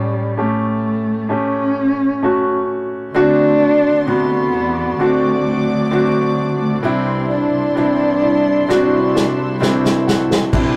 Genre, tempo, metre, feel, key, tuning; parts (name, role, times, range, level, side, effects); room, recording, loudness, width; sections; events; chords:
pop ballad; 65 BPM; 4/4; straight; A4 = 440 Hz
dark cello; melody; 0.0-10.8 s; F#3 to D4; -21 LUFS; equal
bright concert grand piano; accompaniment; 0.0-10.8 s; A2 to F#5; -21 LUFS; equal
dark studio string section; sustained chords; 3.1-10.8 s; E4 to D6; -29 LUFS; equal
picked steel-string acoustic guitar; arpeggios; 3.1-10.8 s; C3 to F#4; -26 LUFS; equal
dark chamber cello section; bass; 3.1-10.8 s; C2 to E2; -25 LUFS; equal
unplugged drum kit; drums; 8.7-10.7 s; crash cymbal, kick drum, snare drum; -20 LUFS; equal
wet booth ambience, RT60 0.3 s; rough rehearsal-room recording, tube saturation; -16 LUFS; mono
0.0-10.5 A section
grand piano fill 8.7-10.5; drum fill 8.7-10.5
0.0 A7; 3.1 D7; 6.8 Cadd9